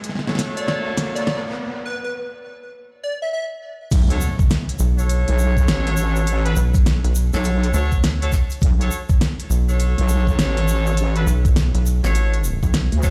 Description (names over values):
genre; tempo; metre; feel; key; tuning
glitch hop; 102 BPM; 4/4; swing 62% on 16ths; B minor; A4 = 436 Hz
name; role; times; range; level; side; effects
pop drum kit; drums; 0.0-13.1 s; crash cymbal, hi-hat, snare drum; -27 LUFS; equal; small room ambience
riser and impact; sound effects; 0.0-6.3 s; none; -30 LUFS; equal; none
clear horn section; stabs; 0.3-13.1 s; D4 to C#5; -30 LUFS; equal; sidechain pumping, digital delay
electronic kick drum; drums; 0.4-13.1 s; none; -20 LUFS; equal; high-pass filter on kick, small room ambience
plucky unison lead; melody; 0.6-3.4 s; B4 to E5; -30 LUFS; equal; digital delay
wobble bass; bass; 3.9-13.1 s; A1 to D2; -21 LUFS; equal; chorus, overdrive
tube shaker; percussion; 3.9-13.1 s; none; -37 LUFS; equal; none
rubbery square bass; bass; 4.8-12.9 s; A1 to D2; -20 LUFS; equal; none
room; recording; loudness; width
light reverb; played on a big sound system in a bare room, stone room reverb; -19 LUFS; mono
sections
0.0-3.9 A section; 3.9-13.1 B section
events
build-up 0.0-3.9; drum fill 0.0-1.6; riser 0.0-1.6; break 1.6-3.9; drop 3.9-13.1; impact 3.9-6.3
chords
0.0 Bm7 (rootless); 3.9 Bm7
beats
0.39 0.97 | 1.56 2.15 2.74 3.33 | 3.92 4.50 5.09 5.68 | 6.27 6.86 7.45 8.03 | 8.62 9.21 9.80 10.39 | 10.97 11.56 12.15 12.74